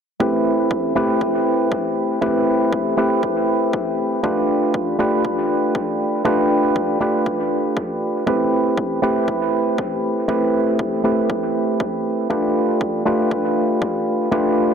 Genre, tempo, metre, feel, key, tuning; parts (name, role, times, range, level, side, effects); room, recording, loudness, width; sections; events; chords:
deep house; 119 BPM; 4/4; swing 60% on 16ths; A minor; A4 = 442 Hz
percussive organ stab; stabs; 0.2-14.7 s; A3 to B4; -17 LUFS; equal; chorus, cassette tape, sidechain pumping, dub echo
electronic kick drum; drums; 0.2-14.4 s; -29 LUFS; left 1 dB; high-pass filter on kick
wet lush hall reverb, RT60 2.2 s; dense, heavily limited modern master; -17 LUFS; side -7 dB against mid
0.2-14.7 A section
0.2 Am9; 4.2 G9; 8.3 Am9; 12.3 G9